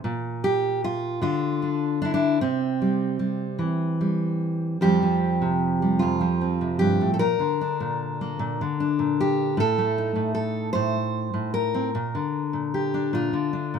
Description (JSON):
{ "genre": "folk, solo fingerstyle acoustic guitar", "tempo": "50 BPM (dotted quarters)", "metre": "6/8", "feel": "rubato", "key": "unclear", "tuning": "A4 = 440 Hz", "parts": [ { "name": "fingerpicked steel-string acoustic guitar", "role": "solo", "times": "0.0-13.8 s", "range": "F2 to C5", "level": "-22 LUFS", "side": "equal", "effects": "none" } ], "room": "light reverb", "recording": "minimal, uncompressed stereo recording", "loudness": "-22 LUFS", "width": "side -7 dB against mid", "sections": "0.0-4.8 A section; 4.8-13.8 B section", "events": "none", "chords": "0.0 Bb; 2.4 C; 4.8 Fsus2; 7.2 Bb; 9.6 Adim; 11.9 Bb" }